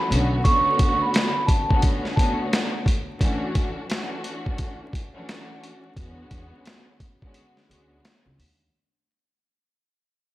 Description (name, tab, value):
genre	hip hop, boom-bap hip-hop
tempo	87 BPM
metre	4/4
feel	swing 62% on 16ths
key	unclear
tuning	A4 = 440 Hz
part	vibraphone with soft mallets	melody	0.0-2.4 s	A5 to C#6	-24 LUFS	right 2 dB	high-pass filter, low-pass filter, analog delay
part	dark studio string section	accompaniment	0.0-8.3 s	D3 to F#4	-29 LUFS	left 1 dB	cassette tape, high-pass filter, low-pass filter
part	upright bass	bass	0.1-0.4, 6.0-8.7 s	B1 to E2	-24 LUFS	equal	tube saturation
part	boom bap sampler-style drum kit	drums	0.1-8.6 s	hi-hat, kick drum, snare drum	-23 LUFS	equal	none
room	small room ambience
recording	dry, gritty hardware recording, vinyl crackle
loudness	-20 LUFS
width	side -16 dB against mid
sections	0.0-8.7 A section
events	fade-out 0.0-8.7; break 0.4-6.0, 7.3-8.7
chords	0.1 Bm7; 3.2 Dmaj7; 6.0 E13